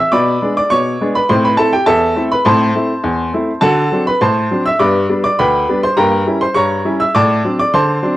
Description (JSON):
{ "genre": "ragtime piano", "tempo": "102 BPM", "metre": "2/4", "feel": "straight", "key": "G major", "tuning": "A4 = 439 Hz", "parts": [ { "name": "clear upright piano", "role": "solo", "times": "0.0-8.2 s", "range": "D2 to E6", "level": "-12 LUFS", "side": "equal", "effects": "cassette tape" } ], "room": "moderate studio reverb, RT60 0.6 s", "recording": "home recording on cassette", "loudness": "-12 LUFS", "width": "side -15 dB against mid", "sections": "0.0-8.2 A section", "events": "none", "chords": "0.1 G#dim/B; 1.3 Am; 3.6 D7; 4.8 G; 6.0 Gdim7; 7.1 D7/A" }